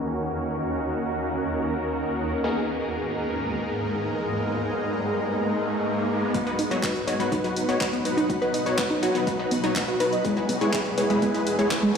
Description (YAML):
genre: progressive house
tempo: 123 BPM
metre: 4/4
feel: straight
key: B major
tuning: A4 = 440 Hz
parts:
  - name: shimmering ambient pad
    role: sustained chords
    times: 0.0-12.0 s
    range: D#2 to F#5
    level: -29 LUFS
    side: right 1 dB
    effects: chorus, built-in reverb, sidechain pumping
  - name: supersaw stab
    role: stabs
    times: 0.0-12.0 s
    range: F#3 to C#5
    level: -26 LUFS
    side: left 2 dB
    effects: sidechain pumping, low-pass filter, digital delay
  - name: riser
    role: sound effects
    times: 3.4-12.0 s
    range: none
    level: -34 LUFS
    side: right 1 dB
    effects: none
  - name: wide unison pluck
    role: arpeggios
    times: 6.3-11.9 s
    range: G#3 to D#5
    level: -26 LUFS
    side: right 1 dB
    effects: sidechain pumping, digital delay
  - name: deep house drum kit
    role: drums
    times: 6.3-12.0 s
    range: handclaps, hi-hat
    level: -31 LUFS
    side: equal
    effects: overdrive, sidechain pumping on hats, low-pass filter on hats, low-pass filter on snare, low-pass filter on room
  - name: electronic kick drum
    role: drums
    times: 6.3-11.8 s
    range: none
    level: -32 LUFS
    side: right 1 dB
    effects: overdrive, high-pass filter on kick, high-pass filter on room
room: moderate lush hall reverb, RT60 1.9 s, digital ambience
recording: played on a big sound system in a bare room, stone room reverb, low-pass filter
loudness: -23 LUFS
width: side -6 dB against mid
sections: 0.0-6.3 A section; 6.3-12.0 B section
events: filter sweep 0.0-6.3; riser 3.4-6.3; build-up 6.3-12.0; filter sweep on synth pluck 6.3-12.0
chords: 0.0 D#m7; 2.4 G#madd9; 6.3 B; 10.2 E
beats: 0.00 | 0.49 0.98 1.47 1.95 | 2.44 2.93 3.42 3.90 | 4.39 4.88 5.37 5.86 | 6.34 6.83 7.32 7.81 | 8.29 8.78 9.27 9.76 | 10.25 10.73 11.22 11.71